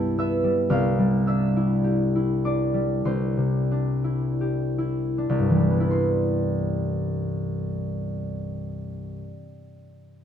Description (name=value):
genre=classical, solo harp piece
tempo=36-56 BPM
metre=4/4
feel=rubato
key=C major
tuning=A4 = 440 Hz
part: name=concert harp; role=solo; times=0.0-9.4 s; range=C2 to A6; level=-22 LUFS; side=equal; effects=none
room=light reverb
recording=close, detailed microphones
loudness=-22 LUFS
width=side -9 dB against mid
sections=0.0-5.9 A section; 5.9-10.2 B section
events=slowing down 0.0-5.9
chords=0.0 Cmaj7